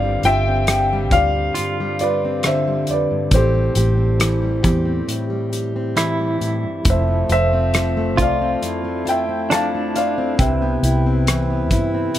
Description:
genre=acoustic folk-pop ballad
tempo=68 BPM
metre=4/4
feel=straight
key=unclear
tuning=A4 = 439 Hz
part: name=dark grand piano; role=melody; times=0.0-12.1 s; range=A4 to A5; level=-21 LUFS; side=equal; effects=none
part: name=fingerpicked plugged-in steel-string acoustic guitar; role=accompaniment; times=0.0-12.2 s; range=F2 to G4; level=-22 LUFS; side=left 1 dB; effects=none
part: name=direct-recorded clean electric guitar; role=arpeggios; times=0.0-10.8 s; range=D4 to B4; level=-26 LUFS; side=right 4 dB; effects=tremolo
part: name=vintage muted fingered electric bass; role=bass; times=0.0-12.1 s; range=F1 to G2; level=-20 LUFS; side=equal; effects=none
part: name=loose indie drum kit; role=drums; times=0.2-12.2 s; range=hi-hat, kick drum, rim click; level=-20 LUFS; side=equal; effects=none
part: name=pedal harmonium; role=sustained chords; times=6.9-12.2 s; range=C3 to B4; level=-27 LUFS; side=right 1 dB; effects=none
room=little or no reverb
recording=none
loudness=-16 LUFS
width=side -12 dB against mid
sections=0.0-12.2 A section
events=none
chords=0.0 G7sus4; 3.3 Am7; 6.9 Fmaj7; 10.4 Cmaj7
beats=0.67 1.55 2.43 | 3.32 4.20 5.08 5.97 | 6.86 7.74 8.62 9.51 | 10.39 11.27 12.15

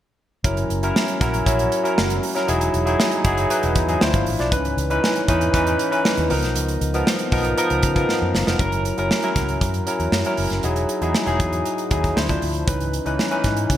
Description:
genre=polished 1980s jazz-funk pop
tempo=118 BPM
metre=4/4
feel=straight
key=unclear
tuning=A4 = 441 Hz
part: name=barky tine electric piano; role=accompaniment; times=0.4-13.8 s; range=E3 to A#5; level=-21 LUFS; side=equal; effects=analog chorus
part: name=fingered electric bass with an envelope filter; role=bass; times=0.4-13.8 s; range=E1 to C#3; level=-24 LUFS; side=equal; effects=none
part: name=modern studio drum kit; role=drums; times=0.4-13.8 s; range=hi-hat, kick drum, snare drum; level=-23 LUFS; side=right 1 dB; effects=gated reverb
room=light reverb, small room ambience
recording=bright 1980s-style digital production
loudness=-18 LUFS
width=side -11 dB against mid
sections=0.4-8.6 A section; 8.6-13.8 B section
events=tine electric piano fill 3.8-4.5, 7.6-8.6; drum fill 8.1-8.6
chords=0.4 F#7; 2.5 Emaj9; 4.0 Dm9; 4.5 C#m9; 6.3 C#13; 8.6 F#7; 10.6 Emaj9; 12.2 Dm9; 12.7 C#m9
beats=| 0.45 0.95 1.46 1.97 | 2.48 2.99 3.50 4.01 | 4.52 5.03 5.54 6.05 | 6.55 7.07 7.58 8.08 | 8.59 9.10 9.61 10.12 | 10.63 11.15 11.66 12.17 | 12.68 13.19 13.70

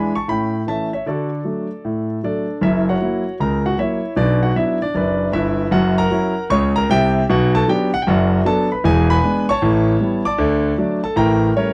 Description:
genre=jazz, stride piano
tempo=154 BPM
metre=4/4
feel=swing 65% on 8ths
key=unclear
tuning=A4 = 440 Hz
part: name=warm concert grand piano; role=solo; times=0.0-11.7 s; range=E1 to D6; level=-18 LUFS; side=equal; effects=none
room=moderate club reverb, RT60 0.6 s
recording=dark, warm production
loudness=-18 LUFS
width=mono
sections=0.0-2.6 A section; 2.6-11.7 B section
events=none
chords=0.3 A; 1.1 D; 2.6 F#7; 4.2 Bm; 5.7 F#7; 7.3 Bm; 8.8 E7; 9.6 A9; 10.4 D; 11.2 A7b9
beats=0.28 0.67 | 1.06 1.45 1.83 2.22 | 2.61 3.00 3.39 3.78 | 4.17 4.56 4.95 5.33 | 5.72 6.11 6.50 6.89 | 7.28 7.67 8.05 8.44 | 8.83 9.22 9.61 10.00 | 10.38 10.77 11.16 11.55

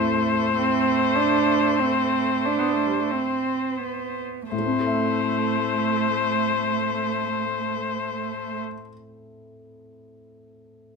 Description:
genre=classical, slow romantic movement for piano quartet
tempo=41-51 BPM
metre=4/4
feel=rubato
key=A minor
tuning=A4 = 441 Hz
part: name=muted violin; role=melody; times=0.0-8.6 s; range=C5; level=-25 LUFS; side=left 8 dB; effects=none
part: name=muted cello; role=second line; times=0.0-8.6 s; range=A3 to D4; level=-26 LUFS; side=right 8 dB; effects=none
part: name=dark concert grand piano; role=accompaniment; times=0.0-11.0 s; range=A2 to E5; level=-31 LUFS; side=left 4 dB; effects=none
part: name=muted viola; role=accompaniment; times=0.0-8.6 s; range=G3 to B3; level=-30 LUFS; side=right 4 dB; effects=none
room=light reverb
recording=minimal, uncompressed stereo recording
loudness=-21 LUFS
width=side -4 dB against mid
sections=0.0-4.5 A section; 4.5-10.3 B section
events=slowing down 0.0-4.5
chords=0.0 Am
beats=0.55 1.79 3.12 | 4.52 5.96 7.42 8.86

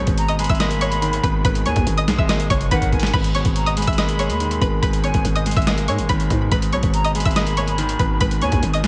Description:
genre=hip hop, trap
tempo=142 BPM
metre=4/4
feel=half-time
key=G# minor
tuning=A4 = 440 Hz
part: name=string-like resonator pluck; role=melody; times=0.0-8.9 s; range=B4 to E6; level=-27 LUFS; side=equal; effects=chorus, low-pass filter, delay
part: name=warm concert grand piano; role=accompaniment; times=0.0-8.9 s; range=G#2 to A#3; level=-27 LUFS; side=equal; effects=low-pass filter
part: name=growling 808-style bass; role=bass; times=0.0-8.9 s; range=F#1 to G#2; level=-24 LUFS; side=equal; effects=none
part: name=lo-fi sampler-style drum kit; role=drums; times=0.1-8.9 s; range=crash cymbal, hi-hat, kick drum, snare drum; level=-24 LUFS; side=equal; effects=none
part: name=silver concert flute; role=second line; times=0.2-8.6 s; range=F#5 to B5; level=-30 LUFS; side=equal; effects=delay
room=moderate lush hall reverb, RT60 1.6 s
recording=dreamy mix soaked in reverb, nothing above 10.8 kHz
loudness=-19 LUFS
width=mono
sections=0.0-8.9 A section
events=drum fill 2.7-3.1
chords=0.0 G#madd9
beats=0.18 0.60 1.02 | 1.45 1.87 2.29 2.71 | 3.14 3.56 3.98 4.40 | 4.83 5.25 5.67 6.09 | 6.52 6.94 7.36 7.78 | 8.21 8.63

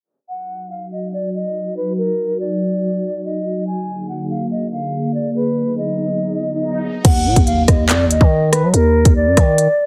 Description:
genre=hip hop, drill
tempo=142 BPM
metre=4/4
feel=half-time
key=Eb harmonic minor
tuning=A4 = 440 Hz
part: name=silver concert flute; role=melody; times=0.3-9.9 s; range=Bb4 to Ab5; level=-23 LUFS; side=equal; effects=low-pass filter, digital delay
part: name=ethereal airy pad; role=sustained chords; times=0.7-7.0 s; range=D3 to Ab4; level=-25 LUFS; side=equal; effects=ensemble chorus, built-in reverb
part: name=swell and impact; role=sound effects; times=5.7-8.7 s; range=none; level=-28 LUFS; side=equal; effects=none
part: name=growling 808-style bass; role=bass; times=7.0-9.7 s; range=Eb2 to Gb3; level=-18 LUFS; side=equal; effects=none
part: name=drill drum kit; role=drums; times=7.0-9.7 s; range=crash cymbal, handclaps, hi-hat, kick drum, rim click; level=-16 LUFS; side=equal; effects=none
room=moderate recital hall reverb, RT60 1.5 s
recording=heavily compressed radio sound, low-pass filter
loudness=-17 LUFS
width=mono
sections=0.3-7.0 A section; 7.0-9.9 B section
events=filter sweep 0.3-7.0; swell 5.7-7.0; impact 7.0-8.7; filter sweep on flute 7.0-9.9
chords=0.3 Ebm; 3.7 Bb7; 5.4 Abm7; 7.0 N.C.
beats=| 0.29 0.71 1.13 1.55 | 1.98 2.40 2.82 3.24 | 3.67 4.09 4.51 4.93 | 5.36 5.78 6.20 6.62 | 7.05 7.47 7.89 8.31 | 8.74 9.16 9.58

